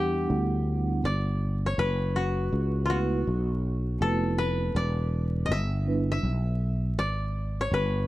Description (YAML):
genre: hip hop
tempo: 81 BPM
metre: 4/4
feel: swing 64% on 16ths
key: E dorian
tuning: A4 = 439 Hz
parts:
  - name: koto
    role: melody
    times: 0.0-8.1 s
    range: F4 to E5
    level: -31 LUFS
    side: left 2 dB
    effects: none
  - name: vibraphone with soft mallets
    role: accompaniment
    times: 0.0-6.2 s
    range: G3 to F#5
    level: -31 LUFS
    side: right 4 dB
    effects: none
  - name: sustaining fretless electric bass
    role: bass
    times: 0.0-8.1 s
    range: E1 to E2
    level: -27 LUFS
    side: equal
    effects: none
room: studio reverb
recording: dry, close 1970s-style studio recording, vinyl crackle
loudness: -25 LUFS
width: side -16 dB against mid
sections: 0.0-8.1 A section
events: none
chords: 0.0 Em9; 1.8 B7sus4/F#; 4.7 Em7